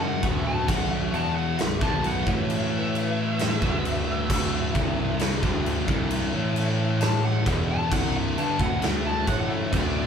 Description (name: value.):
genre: stoner and doom metal.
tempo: 66 BPM.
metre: 4/4.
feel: straight.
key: unclear.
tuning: A4 = 440 Hz.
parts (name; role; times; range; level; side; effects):
fuzz lead guitar; melody; 0.0-10.1 s; D5 to A5; -30 LUFS; left 2 dB; wah, distortion.
organ-like drone; sustained chords; 0.0-10.1 s; F#3 to E5; -40 LUFS; equal; none.
high-gain distorted guitar; riff; 0.0-10.1 s; B1 to D4; -31 LUFS; equal; distortion.
thick fuzz guitar; riff; 0.0-10.1 s; B1 to D4; -31 LUFS; left 9 dB; distortion.
thick fuzz guitar; riff; 0.0-10.1 s; B1 to D4; -31 LUFS; right 8 dB; distortion.
warm bass clarinet; bass; 0.0-10.1 s; B1 to A2; -30 LUFS; right 1 dB; overdrive.
big rock drum kit; drums; 0.2-9.9 s; crash cymbal, kick drum, snare drum; -27 LUFS; equal; none.
room: light reverb.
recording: band playing live in one room.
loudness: -22 LUFS.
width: side -7 dB against mid.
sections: 0.0-10.1 A section.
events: lead electric guitar solo 0.0-10.1.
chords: 0.2 Bm; 2.3 A5; 3.6 Bm; 4.3 D5; 6.3 A5; 7.5 D5.